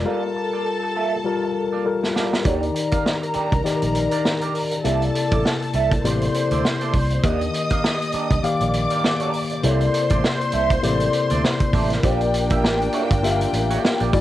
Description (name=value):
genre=lush 1970s-style soul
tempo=100 BPM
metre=4/4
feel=swing 58% on 16ths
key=unclear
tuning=A4 = 442 Hz
part: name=tine electric piano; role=accompaniment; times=0.0-14.2 s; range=C3 to F5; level=-23 LUFS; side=left 4 dB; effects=analog chorus, cassette tape
part: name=fingered electric bass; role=bass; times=0.0-14.2 s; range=G1 to Eb2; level=-24 LUFS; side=right 1 dB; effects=none
part: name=warm symphonic string section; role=second line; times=0.1-14.2 s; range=D4 to Eb6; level=-26 LUFS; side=equal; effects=cassette tape
part: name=electric guitar through a small old amp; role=riff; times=0.1-14.2 s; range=Bb3 to F5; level=-27 LUFS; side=right 7 dB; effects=wah, cassette tape
part: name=vintage drum kit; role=drums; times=2.0-14.2 s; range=hi-hat, kick drum, snare drum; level=-23 LUFS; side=right 1 dB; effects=cassette tape
room=light reverb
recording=home recording on cassette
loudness=-18 LUFS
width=side -14 dB against mid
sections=0.0-2.5 A section; 2.5-12.0 B section; 12.0-14.2 C section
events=break 0.1-2.5; drum fill 1.9-2.5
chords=0.1 Gm9; 2.5 Ebmaj7; 4.8 C13; 7.2 Ebmaj7; 9.6 C13; 12.0 Bb6